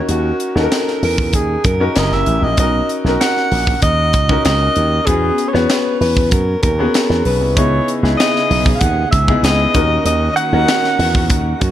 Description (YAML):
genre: polished 1980s jazz-funk pop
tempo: 96 BPM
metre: 4/4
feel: straight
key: unclear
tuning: A4 = 440 Hz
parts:
  - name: mellow alto saxophone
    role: melody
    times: 0.0-11.7 s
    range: F#4 to F#5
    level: -18 LUFS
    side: right 1 dB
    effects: none
  - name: warm baby grand piano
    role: accompaniment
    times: 0.0-11.7 s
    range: B3 to C#5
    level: -20 LUFS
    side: left 2 dB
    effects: wide subtle chorus
  - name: slap bass with an envelope filter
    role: bass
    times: 0.1-11.7 s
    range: F#1 to F#2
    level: -17 LUFS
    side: right 1 dB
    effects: none
  - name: tight funk drum kit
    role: drums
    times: 0.1-11.7 s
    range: hi-hat, kick drum, snare drum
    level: -18 LUFS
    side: equal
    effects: none
  - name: warm studio string section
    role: sustained chords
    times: 7.6-11.7 s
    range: C#3 to G#4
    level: -26 LUFS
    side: right 2 dB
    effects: stereo widening
room: small room ambience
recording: none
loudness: -12 LUFS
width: side -11 dB against mid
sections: 0.0-11.7 A section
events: none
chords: 0.0 D#m7; 2.0 F#7b9; 2.6 Bmaj9; 5.1 E69; 7.6 C#m9; 9.7 D#m7